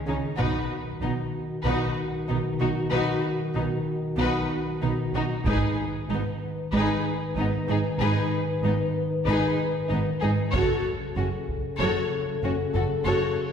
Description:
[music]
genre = cinematic, epic orchestral film score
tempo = 95 BPM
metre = 4/4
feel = straight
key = unclear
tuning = A4 = 440 Hz
[part]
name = mellow French horn section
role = sustained chords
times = 0.0-13.5 s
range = C#3 to B4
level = -30 LUFS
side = left 2 dB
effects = none
[part]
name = warm symphonic violin section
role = melody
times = 0.1-13.4 s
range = D#4 to C#5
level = -34 LUFS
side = left 3 dB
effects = none
[part]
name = warm studio violin section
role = second line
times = 0.1-13.3 s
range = B3 to A4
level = -34 LUFS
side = left 3 dB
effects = none
[part]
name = rich symphonic viola section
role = accompaniment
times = 0.1-13.4 s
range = C#4 to F#4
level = -32 LUFS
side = equal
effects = none
[part]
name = rich symphonic cello section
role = bass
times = 0.1-13.1 s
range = F#2 to C#3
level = -31 LUFS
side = right 2 dB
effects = none
[part]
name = rich symphonic double bass section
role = bass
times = 0.1-13.1 s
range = F#1 to C#2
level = -30 LUFS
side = right 3 dB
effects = none
[part]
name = taiko ensemble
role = drums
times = 0.4-1.6, 5.5-6.7, 10.5-11.8 s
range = none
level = -32 LUFS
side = equal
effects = none
[part]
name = reverse cymbal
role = sound effects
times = 13.4-13.5 s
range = none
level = -53 LUFS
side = equal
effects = none
[sound]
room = wet scoring stage reverb, RT60 1.9 s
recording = heard from further back in the room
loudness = -24 LUFS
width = side -7 dB against mid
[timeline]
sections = 0.0-13.5 A section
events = reverse cymbal 13.4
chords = 0.4 B; 5.5 G#m; 10.5 F#m

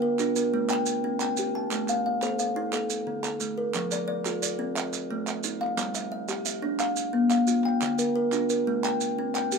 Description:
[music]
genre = southern african traditional, mbira-style interlocking cycle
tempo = 118 BPM (dotted quarters)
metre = 12/8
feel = straight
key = unclear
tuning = A4 = 440 Hz
[part]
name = kalimba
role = arpeggios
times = 0.0-9.6 s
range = D3 to A5-29c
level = -25 LUFS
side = equal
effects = none
[part]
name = group handclap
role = percussion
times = 0.2-9.5 s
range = none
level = -34 LUFS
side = right 6 dB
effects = none
[part]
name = maracas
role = percussion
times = 0.2-9.6 s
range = none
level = -34 LUFS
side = right 10 dB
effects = none
[sound]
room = light reverb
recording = minimal, uncompressed stereo recording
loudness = -25 LUFS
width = side -5 dB against mid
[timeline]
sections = 0.0-9.6 A section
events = none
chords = 0.0 Dm; 0.7 C5; 1.7 Am; 2.7 Dm; 3.7 F; 4.8 A5; 5.8 G5; 6.8 Bb5; 7.8 Dm; 8.8 C5

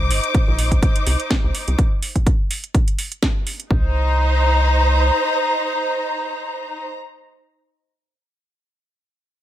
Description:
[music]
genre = minimal techno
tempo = 125 BPM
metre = 4/4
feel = swing 54% on 16ths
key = C minor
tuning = A4 = 441 Hz
[part]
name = rubbery square bass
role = bass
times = 0.0-5.1 s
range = G1 to C2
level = -18 LUFS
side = equal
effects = sidechain pumping
[part]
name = clear studio string section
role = texture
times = 0.0-7.0 s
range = Eb4 to D6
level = -20 LUFS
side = equal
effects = sidechain pumping
[part]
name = house drum kit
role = drums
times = 0.1-3.7 s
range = hi-hat, snare drum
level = -24 LUFS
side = right 2 dB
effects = none
[part]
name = electronic kick drum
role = drums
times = 0.3-3.8 s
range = none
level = -18 LUFS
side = equal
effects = none
[sound]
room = light reverb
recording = none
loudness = -17 LUFS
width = side -12 dB against mid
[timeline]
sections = 0.0-3.7 A section; 3.7-7.5 B section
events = drop 0.0-3.7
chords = 0.0 Cm; 3.7 Cm7

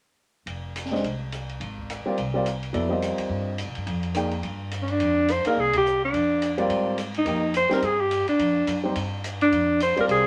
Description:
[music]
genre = modal jazz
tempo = 212 BPM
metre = 4/4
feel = swing 59% on 8ths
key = F dorian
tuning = A4 = 440 Hz
[part]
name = upright bass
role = bass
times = 0.5-10.3 s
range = F1 to C3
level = -34 LUFS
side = equal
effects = none
[part]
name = open jazz drum kit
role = drums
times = 0.5-10.2 s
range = hi-hat, kick drum, ride cymbal, snare drum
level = -37 LUFS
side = equal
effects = none
[part]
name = warm concert grand piano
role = accompaniment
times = 0.9-10.3 s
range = Gb3 to G5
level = -28 LUFS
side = equal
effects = none
[part]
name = warm alto saxophone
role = melody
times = 4.8-10.3 s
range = Db4 to C5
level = -23 LUFS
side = equal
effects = none
[sound]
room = moderate studio reverb, RT60 0.7 s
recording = none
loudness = -25 LUFS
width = mono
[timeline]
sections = 0.5-5.0 A section; 5.0-10.3 B section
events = band accent 5.7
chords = 0.5 Fm69; 2.7 Cm; 5.0 Fm69; 7.3 Cm/F; 9.5 Fm69

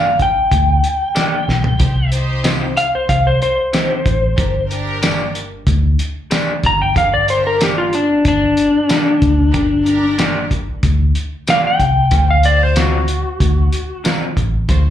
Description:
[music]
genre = straight-eighth soul blues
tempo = 93 BPM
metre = 4/4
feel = straight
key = G harmonic minor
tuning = A4 = 440 Hz
[part]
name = electric slide guitar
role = melody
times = 0.0-14.0 s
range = D4 to Bb5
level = -15 LUFS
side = left 1 dB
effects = slapback echo, analog delay
[part]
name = rich symphonic string section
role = sustained chords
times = 0.0-14.9 s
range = D4 to E#5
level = -27 LUFS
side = right 2 dB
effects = none
[part]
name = electric guitar through a small old amp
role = stabs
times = 0.0-14.2 s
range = C3 to G4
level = -22 LUFS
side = left 2 dB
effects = slapback echo
[part]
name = vintage muted fingered electric bass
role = bass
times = 0.0-14.9 s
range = G1 to D2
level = -17 LUFS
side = equal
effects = none
[part]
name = cloth-damped thuddy drum kit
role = drums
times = 0.2-14.8 s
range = hi-hat, kick drum, snare drum, tambourine, toms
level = -18 LUFS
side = equal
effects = none
[sound]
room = light reverb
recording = live gig heard through the venue's PA, club reverb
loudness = -13 LUFS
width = side -11 dB against mid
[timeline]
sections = 0.0-14.9 A section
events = electric slide guitar solo 0.0-14.9; drum fill 1.5-1.8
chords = 0.0 Gm; 1.8 Cm; 4.4 Gm; 12.1 D7#9

